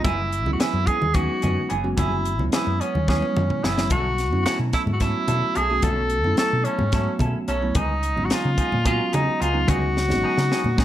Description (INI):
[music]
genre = electric jazz fusion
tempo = 218 BPM (eighths)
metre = 7/8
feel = straight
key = unclear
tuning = A4 = 440 Hz
[part]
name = clear tenor saxophone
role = melody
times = 0.0-10.8 s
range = Db4 to A4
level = -24 LUFS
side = equal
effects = none
[part]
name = bell-like tine electric piano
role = accompaniment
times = 0.0-10.8 s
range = Gb3 to Gb4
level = -28 LUFS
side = right 2 dB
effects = phaser
[part]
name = semi-hollow electric guitar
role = stabs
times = 0.0-10.8 s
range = Fb3 to A4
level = -31 LUFS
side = right 1 dB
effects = lush chorus
[part]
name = hollow-body short-scale fingered electric bass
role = bass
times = 0.0-10.8 s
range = Gb1 to Db3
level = -25 LUFS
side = equal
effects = none
[part]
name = crisp fusion drum kit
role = drums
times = 0.0-10.8 s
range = hi-hat, kick drum, snare drum, toms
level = -25 LUFS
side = left 1 dB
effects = none
[part]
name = congas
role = percussion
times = 0.0-10.8 s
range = none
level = -30 LUFS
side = left 1 dB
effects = none
[sound]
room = light reverb, small room ambience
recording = none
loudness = -20 LUFS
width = side -12 dB against mid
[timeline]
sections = 0.0-10.8 A section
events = drum fill 3.1-3.9, 10.0-10.8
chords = 0.1 Gb9sus4; 3.9 B9sus4; 7.8 Db9sus4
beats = | 0.05 0.33 0.60 0.88 1.15 1.43 1.70 | 1.98 2.25 2.53 2.81 3.08 3.36 3.63 | 3.91 4.18 4.46 4.73 5.01 5.28 5.56 | 5.83 6.11 6.39 6.66 6.94 7.21 7.49 | 7.76 8.04 8.31 8.59 8.86 9.14 9.41 | 9.69 9.96 10.24 10.51 10.79